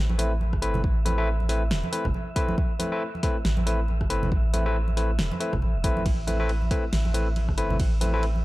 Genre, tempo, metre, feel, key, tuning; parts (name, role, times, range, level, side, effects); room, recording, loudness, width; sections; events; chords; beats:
deep dubstep; 138 BPM; 4/4; swing 57% on 16ths, half-time; A minor; A4 = 440 Hz
soft dub sub bass; bass; 0.0-8.4 s; E1 to A1; -25 LUFS; equal; tube saturation
wind-like tuned noise texture; texture; 0.0-8.4 s; E5; -40 LUFS; right 3 dB; built-in reverb
congas; percussion; 0.1-8.4 s; -34 LUFS; right 2 dB
barky tine electric piano; stabs; 0.2-8.2 s; A3 to B4; -29 LUFS; left 2 dB; dub echo
deep house drum kit; drums; 0.2-8.3 s; hi-hat, ride cymbal, rim click, snare drum; -32 LUFS; equal
electronic kick drum; drums; 0.5-7.9 s; -27 LUFS; equal
little or no reverb; dry, gritty hardware recording; -23 LUFS; side -18 dB against mid
0.0-8.4 A section
0.0 Amadd9
0.41 | 0.84 1.27 1.71 2.14 | 2.58 3.01 3.45 3.88 | 4.32 4.75 5.19 5.62 | 6.06 6.49 6.93 7.36 | 7.80 8.23